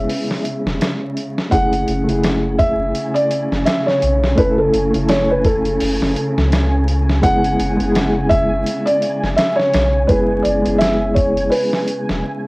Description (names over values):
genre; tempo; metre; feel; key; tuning
trip hop; 84 BPM; 4/4; swing 58% on 16ths; unclear; A4 = 440 Hz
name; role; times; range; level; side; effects
felt-muted upright piano; melody; 0.0-12.5 s; A4 to F#5; -18 LUFS; equal; tape echo
mellow reed electric piano; accompaniment; 0.0-12.5 s; C#3 to A4; -21 LUFS; equal; fast tremolo, cassette tape, tape echo
dark symphonic string section; sustained chords; 0.0-12.5 s; C#3; -24 LUFS; right 1 dB; cassette tape
soft dub sub bass; bass; 0.0-12.2 s; E1 to C#2; -21 LUFS; equal; none
dusty soul sampler-style drum kit; drums; 0.1-12.2 s; hi-hat, kick drum, snare drum; -21 LUFS; equal; small room ambience, cassette tape
flickering grainy texture; texture; 2.6-12.5 s; G#5; -32 LUFS; right 1 dB; built-in reverb, cassette tape
room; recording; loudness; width
light reverb; home recording on cassette, vinyl crackle; -14 LUFS; side -24 dB against mid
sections
0.0-12.5 A section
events
break 11.5-12.5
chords
0.0 E; 1.5 F#m7; 7.2 E/F#